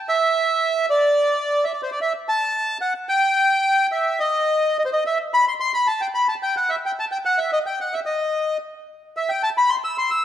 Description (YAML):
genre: tango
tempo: 109 BPM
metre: 4/4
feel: rubato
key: E harmonic minor from 5.3 s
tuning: A4 = 439 Hz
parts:
  - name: bandoneon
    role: solo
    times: 0.1-10.2 s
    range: C5 to E6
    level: -18 LUFS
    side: equal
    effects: none
room: moderate concert hall reverb, RT60 1.9 s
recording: dark, warm production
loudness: -18 LUFS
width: side -10 dB against mid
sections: 0.0-5.3 A section; 5.3-10.2 B section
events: none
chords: none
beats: 0.35 | 0.89 1.44 1.98 2.53 | 3.07 3.62 4.18 4.74 | 5.30 5.86 6.42 6.97 | 7.52 8.07 8.62 9.16 | 9.71